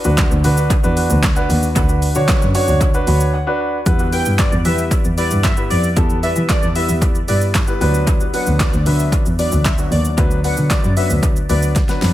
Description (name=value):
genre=dance-pop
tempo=114 BPM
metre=4/4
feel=straight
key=E minor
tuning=A4 = 440 Hz
part: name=warm concert grand piano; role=accompaniment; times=0.0-12.1 s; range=F#3 to B5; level=-21 LUFS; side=left 1 dB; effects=sidechain pumping, tape echo
part: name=rich double bass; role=bass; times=0.0-12.1 s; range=D2 to E3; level=-17 LUFS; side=equal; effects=sidechain pumping
part: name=deep house drum kit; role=drums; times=0.0-12.1 s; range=handclaps, hi-hat, kick drum, shaker, snare drum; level=-18 LUFS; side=equal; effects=overdrive, tape echo
part: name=airy dreamy lead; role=melody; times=4.1-11.6 s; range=D5 to G5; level=-24 LUFS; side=equal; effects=chorus, sidechain pumping, tape echo
room=little or no reverb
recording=echo-heavy mix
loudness=-14 LUFS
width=side -14 dB against mid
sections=0.0-3.9 A section; 3.9-12.1 B section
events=grand piano fill 2.8-3.9; break 3.3-3.9; drum fill 11.8-12.1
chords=0.0 Bm/D; 3.9 Em; 7.8 Bm/D